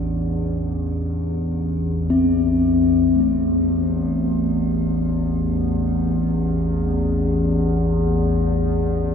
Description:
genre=world meditative, free-time meditation music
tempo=free time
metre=none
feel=none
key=A minor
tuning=A4 = 440 Hz
part: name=warbly tape-like pad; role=drone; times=0.0-9.1 s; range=A1 to E2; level=-20 LUFS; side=equal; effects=chorus, built-in reverb
part: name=bronze singing bowl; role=texture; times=0.0-9.1 s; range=A3 to D4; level=-22 LUFS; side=left 2 dB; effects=stereo widening, shimmer reverb
room=wet cathedral reverb, RT60 5.0 s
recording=in a vast, echoing space, cassette tape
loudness=-18 LUFS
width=side -7 dB against mid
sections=0.0-3.0 A section; 3.0-9.1 A section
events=none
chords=none

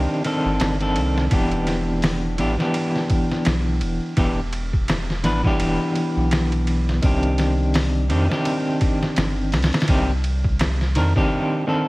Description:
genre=trip hop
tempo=84 BPM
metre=4/4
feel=swing 57% on 16ths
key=unclear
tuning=A4 = 440 Hz
part: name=electric guitar at the edge of break-up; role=accompaniment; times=0.0-11.9 s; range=Eb3 to B4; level=-22 LUFS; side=equal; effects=tremolo, tape echo
part: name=soft dub sub bass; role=bass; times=0.0-11.1 s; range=E1 to F2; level=-22 LUFS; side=equal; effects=none
part: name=trip hop sampler-style drum kit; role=drums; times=0.2-11.3 s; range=hi-hat, kick drum, ride cymbal, snare drum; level=-23 LUFS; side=equal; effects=none
room=light reverb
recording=vinyl crackle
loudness=-18 LUFS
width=side -21 dB against mid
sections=0.0-11.9 A section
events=break 11.3-11.9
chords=0.0 Cmadd9; 1.3 Em7; 7.0 Cmadd9

